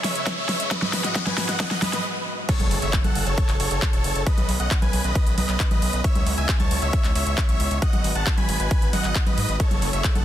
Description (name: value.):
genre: uplifting trance.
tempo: 135 BPM.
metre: 4/4.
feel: straight.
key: F# dorian.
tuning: A4 = 439 Hz.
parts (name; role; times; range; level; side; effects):
big supersaw lead; melody; 0.0-10.2 s; A4 to B5; -27 LUFS; equal; sidechain pumping, digital delay.
lush unison pad; sustained chords; 0.0-10.2 s; G#2 to B4; -34 LUFS; equal; chorus, sidechain pumping.
big-room dance drum kit; drums; 0.0-10.2 s; congas, crash cymbal, handclaps, hi-hat, snare drum; -27 LUFS; right 1 dB; overdrive, sidechain pumping on hats, sidechain pumping on perc, sidechain pumping on cymbals.
riser and impact; sound effects; 0.0-4.3 s; none; -30 LUFS; left 1 dB; none.
electronic kick drum; drums; 0.3-10.1 s; none; -22 LUFS; equal; overdrive, high-pass filter on kick.
gritty driven synth bass; bass; 2.6-10.2 s; E1 to G#2; -26 LUFS; equal; sidechain pumping.
room: digital ambience.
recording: dense, heavily limited modern master.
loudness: -20 LUFS.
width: side -12 dB against mid.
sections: 0.0-2.5 A section; 2.5-10.2 B section.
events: build-up 0.0-2.5; drum fill 0.0-2.0; riser 0.0-2.0; stop 2.0-2.5; drop 2.5-10.2; impact 2.5-4.3.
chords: 0.0 C#m7; 0.7 G#m7; 2.5 F#madd9; 4.3 Badd9; 6.0 C#m7; 7.8 G#m7; 9.6 F#madd9.